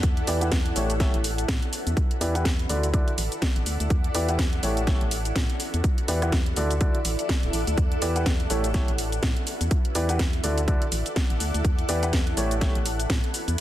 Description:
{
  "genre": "piano house",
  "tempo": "124 BPM",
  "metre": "4/4",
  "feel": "swing 58% on 16ths",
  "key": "E dorian",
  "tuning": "A4 = 440 Hz",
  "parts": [
    { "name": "organ-like FM bass", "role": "bass", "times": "0.0-13.6 s", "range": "D1 to A2", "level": "-28 LUFS", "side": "equal", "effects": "sidechain pumping" },
    { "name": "electronic kick drum", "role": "drums", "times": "0.0-13.2 s", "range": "none", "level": "-24 LUFS", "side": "equal", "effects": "overdrive" },
    { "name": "house drum kit", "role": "drums", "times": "0.0-13.6 s", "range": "hi-hat, rim click, shaker, snare drum", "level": "-30 LUFS", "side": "equal", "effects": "overdrive" },
    { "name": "granular cloud pad", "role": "texture", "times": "0.0-13.6 s", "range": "E4 to F#5", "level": "-32 LUFS", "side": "equal", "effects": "built-in reverb, sidechain pumping" },
    { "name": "bright baby grand piano", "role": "riff", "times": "0.3-12.8 s", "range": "D3 to F#5", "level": "-30 LUFS", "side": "equal", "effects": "sidechain pumping, low-pass filter, tape echo" }
  ],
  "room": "digital ambience",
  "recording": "dense, heavily limited modern master",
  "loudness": "-22 LUFS",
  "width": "side -13 dB against mid",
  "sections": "0.0-13.6 A section",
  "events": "none",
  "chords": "0.0 Em7; 0.8 A7; 1.7 Em7; 2.7 Dadd9; 3.9 Em7; 4.6 A7; 5.6 Em7; 6.6 Dadd9; 7.8 Em7; 8.5 A7; 9.5 Em7; 10.4 Dadd9; 11.6 Em7; 12.4 A7"
}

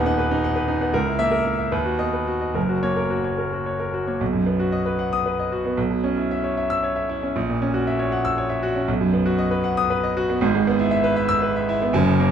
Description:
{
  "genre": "classical, virtuoso piano study",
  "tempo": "72-80 BPM (dotted quarters)",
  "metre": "6/8",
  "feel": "rubato",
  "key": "B major",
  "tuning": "A4 = 439 Hz",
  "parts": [
    { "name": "clear grand piano", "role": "solo", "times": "0.0-12.3 s", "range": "D#1 to E6", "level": "-19 LUFS", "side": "equal", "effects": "none" }
  ],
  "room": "light reverb",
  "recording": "dark, warm production",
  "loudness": "-20 LUFS",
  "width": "side -8 dB against mid",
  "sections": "0.0-4.2 A section; 4.2-12.3 B section",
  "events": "none",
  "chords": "0.0 B/D#; 0.9 A#dim/C#; 1.7 B/D#; 2.6 F#; 4.2 B; 5.8 C#m7/B; 7.4 F#7/A#; 8.9 B; 10.4 E/G#"
}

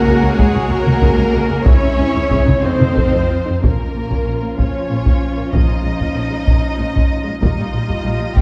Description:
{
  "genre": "cinematic, epic orchestral film score",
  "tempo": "63 BPM (dotted quarters)",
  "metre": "6/8",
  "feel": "straight",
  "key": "Bb dorian from 3.6 s",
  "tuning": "A4 = 439 Hz",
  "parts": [
    { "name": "rich symphonic violin section", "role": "melody", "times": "0.0-8.4 s", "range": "G#4 to G5", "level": "-29 LUFS", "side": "equal", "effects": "none" },
    { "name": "warm studio violin section", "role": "second line", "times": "0.0-8.4 s", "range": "Bb3 to C#5", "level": "-29 LUFS", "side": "equal", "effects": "none" },
    { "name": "rich symphonic viola section", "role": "accompaniment", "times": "0.0-8.4 s", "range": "F3 to F#5", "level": "-29 LUFS", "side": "equal", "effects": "none" },
    { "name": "mellow French horn section", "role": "sustained chords", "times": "0.0-8.4 s", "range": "F3 to F#4", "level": "-28 LUFS", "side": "equal", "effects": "none" },
    { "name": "warm studio string section", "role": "sustained chords", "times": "0.0-3.6 s", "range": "E4 to G#5", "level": "-29 LUFS", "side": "equal", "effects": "none" },
    { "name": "clear trumpet section", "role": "stabs", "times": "0.0-3.6 s", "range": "G#4 to C#5", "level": "-25 LUFS", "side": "equal", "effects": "none" },
    { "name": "clear symphonic cello section", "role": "bass", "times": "0.0-8.4 s", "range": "Bb2 to C#4", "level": "-24 LUFS", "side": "equal", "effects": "none" },
    { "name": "timpani", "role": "percussion", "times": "0.0-0.7 s", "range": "C#3", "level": "-28 LUFS", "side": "equal", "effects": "none" },
    { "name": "rich chamber double bass section", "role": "bass", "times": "0.1-8.4 s", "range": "Bb1 to F2", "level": "-24 LUFS", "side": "equal", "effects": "none" },
    { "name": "taiko ensemble", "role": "drums", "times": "0.4-8.4 s", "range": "none", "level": "-19 LUFS", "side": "equal", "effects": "none" }
  ],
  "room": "moderate scoring stage reverb, RT60 1.8 s",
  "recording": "dark, warm production",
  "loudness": "-16 LUFS",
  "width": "mono",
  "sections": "0.0-3.6 A section; 3.6-8.4 B section",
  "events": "none",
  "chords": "0.0 F#add9/C#; 1.7 C#madd9; 2.6 F7; 3.6 Bbm; 5.5 Dbadd9/Bb; 7.4 Ebadd9/Bb"
}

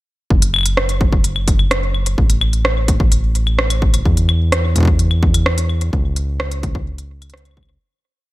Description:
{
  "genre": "IDM",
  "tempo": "128 BPM",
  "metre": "4/4",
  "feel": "straight",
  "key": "F# minor",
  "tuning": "A4 = 440 Hz",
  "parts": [
    { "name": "round analog bass", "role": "bass", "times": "0.3-7.8 s", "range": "F#1 to E2", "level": "-17 LUFS", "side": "equal", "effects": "tube saturation" },
    { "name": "electronic kick drum", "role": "drums", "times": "0.3-7.7 s", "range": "none", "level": "-16 LUFS", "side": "equal", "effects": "none" },
    { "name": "industrial drum kit", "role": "drums", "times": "0.4-7.8 s", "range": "claves, hi-hat, rim click", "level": "-20 LUFS", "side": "equal", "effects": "ping-pong delay" }
  ],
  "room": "little or no reverb",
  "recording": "none",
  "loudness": "-14 LUFS",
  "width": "side -18 dB against mid",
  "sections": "0.3-7.8 groove",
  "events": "fade-out 5.3-7.8",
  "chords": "none"
}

